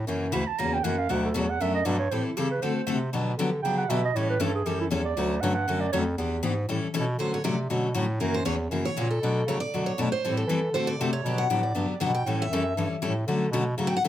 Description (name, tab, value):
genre	acoustic string swing (jazz manouche)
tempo	237 BPM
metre	4/4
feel	swing 56% on 8ths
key	D major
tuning	A4 = 440 Hz
part	clear bass clarinet	bass	0.0-14.1 s	D2 to E3	-28 LUFS	right 1 dB	none
part	picked steel-string acoustic guitar	accompaniment	0.1-14.1 s	B2 to A4	-28 LUFS	left 3 dB	none
part	dark clarinet	second line	0.3-6.0 s	E4 to B5	-29 LUFS	right 6 dB	none
part	picked steel-string acoustic guitar	melody	7.2-14.1 s	A4 to G5	-30 LUFS	equal	plate reverb
room	moderate club reverb, RT60 0.7 s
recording	none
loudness	-24 LUFS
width	side -12 dB against mid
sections	0.0-7.2 A section; 7.2-14.1 A section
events	clarinet solo 0.0-7.2; steel-string acoustic guitar solo 7.2-14.1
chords	0.1 F#7; 1.1 Bm7; 2.1 Am7; 2.6 D7; 3.1 Gmaj7; 4.1 A7; 5.2 Dmaj7; 6.2 Em7; 6.7 A7; 7.2 Dmaj7; 8.2 F#7; 9.2 Bm9; 10.2 Am7; 10.7 D7; 11.2 Gmaj7; 12.3 A7; 13.3 Dmaj7